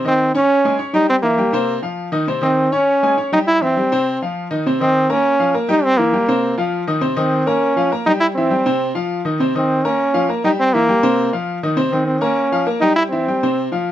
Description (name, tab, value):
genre	latin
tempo	202 BPM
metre	4/4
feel	straight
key	unclear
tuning	A4 = 440 Hz
part	clear baby grand piano	accompaniment	0.0-13.9 s	C3 to Db6	-19 LUFS	left 1 dB	none
part	bright trombone	melody	0.1-13.7 s	Bb3 to E4	-15 LUFS	right 1 dB	none
room	light reverb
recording	close, detailed microphones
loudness	-15 LUFS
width	side -12 dB against mid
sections	0.0-4.7 A section; 4.7-13.9 A section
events	none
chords	0.5 Eb7; 1.1 C7; 1.7 F5; 2.9 Eb7 (rootless); 3.5 C; 4.1 F5; 4.7 Cm7; 5.2 Bbm; 5.8 C7; 6.4 F5; 7.6 Bbm; 8.2 C; 8.8 F5; 10.0 Bbm; 10.6 C7; 11.2 F5; 12.4 Bbm; 13.0 C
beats	0.19 0.49 0.79 | 1.09 1.38 1.68 1.98 | 2.27 2.57 2.87 3.17 | 3.46 3.76 4.06 4.36 | 4.65 4.95 5.25 5.54 | 5.84 6.14 6.43 6.73 | 7.03 7.32 7.62 7.92 | 8.21 8.51 8.81 9.11 | 9.40 9.70 10.00 10.29 | 10.59 10.89 11.19 11.48 | 11.78 12.08 12.38 12.67 | 12.97 13.27 13.56 13.86